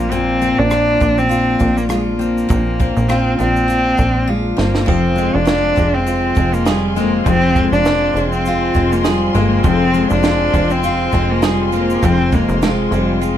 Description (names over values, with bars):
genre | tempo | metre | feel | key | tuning
acoustic pop | 101 BPM | 4/4 | swing 55% on 16ths | unclear | A4 = 440 Hz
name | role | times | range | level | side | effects
warm cello | melody | 0.0-13.4 s | G3 to D4 | -17 LUFS | equal | none
picked steel-string acoustic guitar | accompaniment | 0.0-13.4 s | F2 to F4 | -19 LUFS | left 4 dB | none
plucky analog bass | bass | 0.0-13.4 s | F1 to Bb1 | -20 LUFS | right 1 dB | none
compact cocktail drum kit | drums | 0.1-13.4 s | kick drum, rim click, shaker, snare drum, splash cymbal | -19 LUFS | right 1 dB | none
warm studio string section | sustained chords | 4.9-13.4 s | F4 to C6 | -26 LUFS | left 4 dB | none
direct-recorded clean electric guitar | arpeggios | 4.9-13.4 s | F3 to Ab4 | -25 LUFS | right 10 dB | none
room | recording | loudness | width
moderate studio reverb, RT60 0.5 s | none | -13 LUFS | side -10 dB against mid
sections
0.0-13.4 A section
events
drum fill 4.3-4.9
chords
0.0 Bbadd9; 4.9 Fm